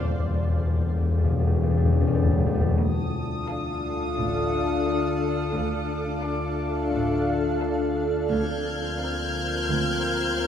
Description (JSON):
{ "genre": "cinematic", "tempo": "87 BPM", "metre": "4/4", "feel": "straight", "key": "D phrygian", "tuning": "A4 = 439 Hz", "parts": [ { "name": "shimmering ambient pad", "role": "sustained chords", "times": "0.0-10.5 s", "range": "D4 to F5", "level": "-30 LUFS", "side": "right 1 dB", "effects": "chorus, built-in reverb" }, { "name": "deep rumbling drone", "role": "drone", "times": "0.0-10.5 s", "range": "D2 to E2", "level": "-30 LUFS", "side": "equal", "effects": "built-in reverb" }, { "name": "timpani", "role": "percussion", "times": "0.0-2.8, 8.3-9.3 s", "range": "E2 to D3", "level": "-24 LUFS", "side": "left 2 dB", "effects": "none" }, { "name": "dark French horn section", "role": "sustained chords", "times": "2.8-10.5 s", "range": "C4 to F4", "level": "-30 LUFS", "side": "left 5 dB", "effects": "none" }, { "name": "warm trombone section", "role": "sustained chords", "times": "2.8-10.5 s", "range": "D3 to Bb3", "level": "-34 LUFS", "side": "equal", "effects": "none" }, { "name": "rich chamber double bass section", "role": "bass", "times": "2.8-10.2 s", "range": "A1 to D2", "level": "-34 LUFS", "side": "right 4 dB", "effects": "none" }, { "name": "rich studio cello section", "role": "bass", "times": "2.8-10.2 s", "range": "D2 to A2", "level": "-35 LUFS", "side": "right 3 dB", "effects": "none" }, { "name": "rich studio violin section", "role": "texture", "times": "2.8-10.5 s", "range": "A5 to G#6", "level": "-31 LUFS", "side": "left 2 dB", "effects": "none" }, { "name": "rich symphonic violin section", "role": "melody", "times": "3.5-10.5 s", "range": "F5", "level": "-47 LUFS", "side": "left 2 dB", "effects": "none" }, { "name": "rich chamber violin section", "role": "second line", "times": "3.5-10.5 s", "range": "A4 to Bb4", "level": "-44 LUFS", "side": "left 3 dB", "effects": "none" }, { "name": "rich chamber viola section", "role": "accompaniment", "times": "3.5-10.5 s", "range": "C4 to D4", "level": "-42 LUFS", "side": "equal", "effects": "none" } ], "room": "moderate scoring stage reverb, RT60 1.9 s", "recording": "none", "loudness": "-22 LUFS", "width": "side -9 dB against mid", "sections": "0.0-2.8 A section; 2.8-10.5 B section", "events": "timpani fill 0.0-2.8; break 0.0-2.8", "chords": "0.0 N.C.; 2.8 Dm; 8.3 Fsus4/D", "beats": "| 0.04 0.73 1.42 2.11 | 2.80 3.49 4.18 4.87 | 5.55 6.25 6.93 7.62 | 8.31 9.00 9.69 10.38" }